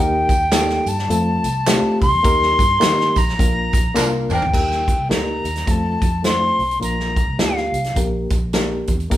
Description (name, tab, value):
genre	uptempo 1960s-style soul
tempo	105 BPM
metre	4/4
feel	swing 60% on 8ths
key	unclear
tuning	A4 = 440 Hz
part	silver concert flute	melody	0.0-8.0 s	F5 to C6	-20 LUFS	left 1 dB	none
part	reed electric piano	accompaniment	0.0-9.2 s	A3 to C5	-23 LUFS	left 2 dB	fast tremolo
part	vintage muted fingered electric bass	bass	0.0-9.2 s	Bb1 to Eb3	-24 LUFS	equal	none
part	natural country drum kit	drums	0.3-9.2 s	crash cymbal, hi-hat, kick drum, snare drum, toms	-20 LUFS	equal	none
part	tambourine and handclaps	percussion	0.3-4.4 s	none	-30 LUFS	right 4 dB	none
part	warm horn section	second line	4.0-4.4 s	F3 to Bb4	-26 LUFS	right 1 dB	none
room	moderate large studio reverb, RT60 0.9 s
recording	band playing live in one room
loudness	-16 LUFS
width	side -13 dB against mid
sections	0.0-4.5 A section; 4.5-9.2 B section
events	band accent 2.2-4.5; drum fill 4.0-4.5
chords	0.0 Eb; 1.1 F; 2.2 Eb; 3.4 Bb; 4.5 Eb; 5.7 F; 6.8 Bb; 8.0 Gm/Bb